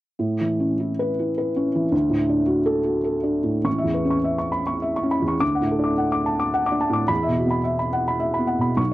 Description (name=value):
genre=neoclassical minimalist piano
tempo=105 BPM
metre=3/4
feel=rubato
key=A major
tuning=A4 = 440 Hz
part: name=felt-muted upright piano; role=solo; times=0.2-8.9 s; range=A1 to D6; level=-20 LUFS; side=equal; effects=none
room=moderate booth ambience, RT60 0.2 s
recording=worn, warbling old tape, cassette tape, warbly pitch drift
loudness=-20 LUFS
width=side -16 dB against mid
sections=0.2-3.7 A section; 3.7-8.9 B section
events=none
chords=0.2 Aadd9; 1.9 D; 3.7 Aadd9; 5.4 D; 7.1 Esus2